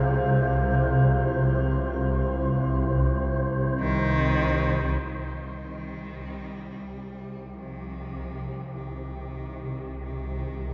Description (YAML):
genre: dark ambient drone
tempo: free time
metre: none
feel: none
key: C minor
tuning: A4 = 444 Hz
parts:
  - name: dark analog pad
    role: sustained chords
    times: 0.0-5.0 s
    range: C3 to F5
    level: -31 LUFS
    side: equal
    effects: chorus, phaser, shimmer reverb
  - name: swarming drone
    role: drone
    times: 0.0-10.7 s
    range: C2 to C3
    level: -29 LUFS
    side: equal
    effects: built-in reverb
  - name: wind-like tuned noise texture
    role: texture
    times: 0.0-10.7 s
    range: G4 to C5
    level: -37 LUFS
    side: equal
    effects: built-in reverb, shimmer reverb
  - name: rich cello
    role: melody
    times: 3.8-10.7 s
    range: Eb3 to G3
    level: -34 LUFS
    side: equal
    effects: diffuse ambient delay
  - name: bright grand piano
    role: arpeggios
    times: 5.0-10.7 s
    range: none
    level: barely audible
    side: none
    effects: none
room: wet cathedral reverb, RT60 5.2 s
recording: dark, warm production, nothing above 7.6 kHz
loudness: -26 LUFS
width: mono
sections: 0.0-5.0 A section; 5.0-10.7 B section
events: fade-in on synth drone 5.0-10.7; fade-in on synth texture 5.0-10.7; fade-in on cello 5.0-10.7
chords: 0.0 Ab6/C; 5.0 Cm